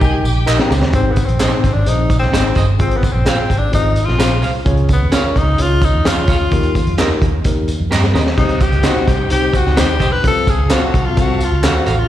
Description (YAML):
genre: uptempo 1960s-style soul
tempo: 129 BPM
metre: 4/4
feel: straight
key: Ab major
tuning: A4 = 440 Hz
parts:
  - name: clear tenor saxophone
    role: melody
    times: 0.0-12.1 s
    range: Cb4 to Cb5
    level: -20 LUFS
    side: left 2 dB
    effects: slapback echo
  - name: warm symphonic string section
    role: second line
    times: 0.0-0.7, 8.4-12.1 s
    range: C4 to Ab5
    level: -26 LUFS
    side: equal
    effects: slapback echo
  - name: mellow tine electric piano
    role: accompaniment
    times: 0.0-11.9 s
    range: Ab2 to G5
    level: -22 LUFS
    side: left 4 dB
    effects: slapback echo
  - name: vintage muted fingered electric bass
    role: bass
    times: 0.0-12.1 s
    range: G1 to G2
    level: -16 LUFS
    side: equal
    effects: none
  - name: crunchy breakbeat drum kit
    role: drums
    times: 0.0-12.0 s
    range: crash cymbal, hi-hat, kick drum, snare drum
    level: -18 LUFS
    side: equal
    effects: none
  - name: tambourine and handclaps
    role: percussion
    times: 0.0-12.0 s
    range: none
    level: -27 LUFS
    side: equal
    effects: none
  - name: electric guitar at the edge of break-up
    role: stabs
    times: 0.5-11.9 s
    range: G4 to F5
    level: -23 LUFS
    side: right 6 dB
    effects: slapback echo
room: studio reverb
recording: live gig heard through the venue's PA, recital hall reverb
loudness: -12 LUFS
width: side -12 dB against mid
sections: 0.9-12.1 A section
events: drum fill 0.0-0.9, 7.9-8.4; tenor saxophone solo 0.9-12.1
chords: 0.0 Eb; 0.9 Ab; 2.8 Fm/Ab; 4.7 Db; 6.5 Eb; 8.4 Cm; 10.2 F/C